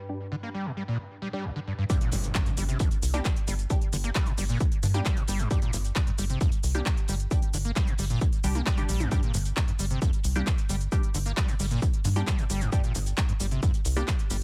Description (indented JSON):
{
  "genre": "driving peak-time techno",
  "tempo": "133 BPM",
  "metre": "4/4",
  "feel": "straight",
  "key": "G minor",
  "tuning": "A4 = 440 Hz",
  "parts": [
    { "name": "swarming drone", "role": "drone", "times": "0.0-1.9 s", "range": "G2", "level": "-46 LUFS", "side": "equal", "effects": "built-in reverb, sidechain pumping" },
    { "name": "filtered dub chord stab", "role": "stabs", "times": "0.1-14.1 s", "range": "G3 to G4", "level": "-40 LUFS", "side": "equal", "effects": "phaser, sidechain pumping, tape echo" },
    { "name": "screaming distorted acid line", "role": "riff", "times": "0.3-14.4 s", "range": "G1 to Bb3", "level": "-35 LUFS", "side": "equal", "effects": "distortion, analog chorus, sidechain pumping, tape echo" },
    { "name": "cloth-damped thuddy drum kit", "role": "drums", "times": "1.9-14.4 s", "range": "hi-hat, snare drum", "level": "-48 LUFS", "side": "equal", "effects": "none" },
    { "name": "electronic kick drum", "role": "drums", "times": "1.9-14.2 s", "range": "none", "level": "-28 LUFS", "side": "equal", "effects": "none" },
    { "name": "techno drum kit", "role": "drums", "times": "1.9-14.4 s", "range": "handclaps, hi-hat, shaker, toms", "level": "-37 LUFS", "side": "equal", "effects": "sidechain pumping on hats, sidechain pumping on perc, sidechain pumping on toms" },
    { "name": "impact", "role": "sound effects", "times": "2.0-3.7 s", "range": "none", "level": "-40 LUFS", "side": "equal", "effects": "none" },
    { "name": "tight sequencer bass", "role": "bass", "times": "2.1-14.4 s", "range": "G1 to G2", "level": "-30 LUFS", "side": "equal", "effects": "sidechain pumping" }
  ],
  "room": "digital ambience",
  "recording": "none",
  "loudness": "-27 LUFS",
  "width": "mono",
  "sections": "0.0-1.9 A section; 1.9-14.4 B section",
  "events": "drop 1.9-14.4; impact 1.9-3.7",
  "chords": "0.0 G5"
}